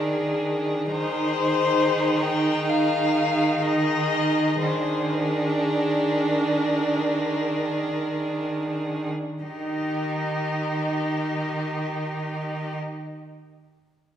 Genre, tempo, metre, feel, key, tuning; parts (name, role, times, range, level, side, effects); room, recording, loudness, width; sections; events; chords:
classical, slow romantic movement for string quartet; free time; Eb major; A4 = 438 Hz
warm violin; melody; 0.0-12.8 s; Bb4 to G5; -28 LUFS; left 6 dB
warm violin; second line; 0.0-12.8 s; G4 to Ab4; -32 LUFS; left 2 dB
clear viola; accompaniment; 0.0-12.8 s; D4 to Eb4; -27 LUFS; right 2 dB
clear cello; bass; 0.0-12.8 s; Eb3; -27 LUFS; right 2 dB
wet recital hall reverb, RT60 1.8 s; heard from further back in the room; -22 LUFS; side -10 dB against mid
0.0-9.4 A section; 9.4-14.2 B section
slowing down 0.0-9.4
0.0 Bb7/Eb; 0.9 Ab/Eb; 4.6 Bb7/Eb; 9.4 Eb